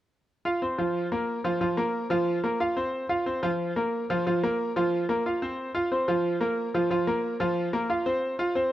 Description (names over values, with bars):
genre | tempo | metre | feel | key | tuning
latin | 181 BPM | 4/4 | straight | unclear | A4 = 439 Hz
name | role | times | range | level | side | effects
bright concert grand piano | solo | 0.5-8.7 s | F3 to F5 | -25 LUFS | equal | none
room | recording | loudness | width
moderate plate reverb, RT60 2.2 s | worn, warbling old tape, cassette tape, warbly pitch drift | -25 LUFS | side -13 dB against mid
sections
0.3-8.7 A section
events
none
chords
0.3 F5; 0.9 Bb5; 2.3 Fsus4; 2.9 F5; 3.6 Bb5; 4.9 Fsus4; 5.6 F5; 6.2 Bb5; 7.6 Fsus4